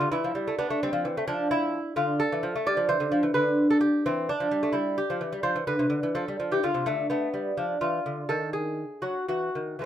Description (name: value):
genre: classical, baroque-style dance for lute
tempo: 86 BPM (dotted quarters)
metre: 12/8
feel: rubato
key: unclear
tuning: A4 = 440 Hz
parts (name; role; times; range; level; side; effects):
- lute; solo; 0.0-9.9 s; C3 to D5; -24 LUFS; equal; none
room: moderate small room ambience, RT60 0.5 s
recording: minimal, uncompressed stereo recording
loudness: -24 LUFS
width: side -10 dB against mid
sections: 0.0-9.9 A section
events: none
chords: 0.0 Am; 1.3 Dm/F; 2.7 G5; 4.0 Em7; 5.4 F5; 6.9 Bdim/D; 8.3 D#madd11